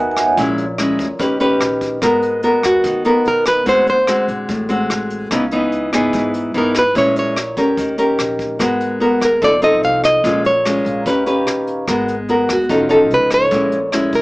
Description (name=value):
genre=bossa nova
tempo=146 BPM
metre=4/4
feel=straight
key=G# minor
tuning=A4 = 440 Hz
part: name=nylon-string guitar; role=accompaniment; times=0.0-14.2 s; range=G#2 to B4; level=-16 LUFS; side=equal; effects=none
part: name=vibraphone with medium mallets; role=accompaniment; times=0.0-1.2, 8.8-11.9 s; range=G#4 to C#6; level=-22 LUFS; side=right 2 dB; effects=none
part: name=upright bass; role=bass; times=0.0-14.2 s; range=F1 to E2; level=-31 LUFS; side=equal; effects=none
part: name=jazz brush drum kit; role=drums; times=0.2-14.2 s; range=hi-hat, kick drum, rim click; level=-26 LUFS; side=equal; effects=none
part: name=nylon-string guitar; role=melody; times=2.7-14.2 s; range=F#4 to F5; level=-15 LUFS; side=equal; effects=none
room=light reverb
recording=small speaker sound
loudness=-13 LUFS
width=side -21 dB against mid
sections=0.0-2.0 A section; 2.0-14.2 B section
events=vibraphone solo 0.0-2.0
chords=0.4 A#m7b5; 1.2 D#7b13; 2.0 G#m9; 3.7 D7#11; 5.3 C#m9; 7.0 A#m7b5; 7.8 D#7; 8.6 G#m9; 9.4 F7; 10.2 A#m7; 11.1 D#7b13; 11.9 G#m9; 12.7 Faug7; 13.5 A#m7b5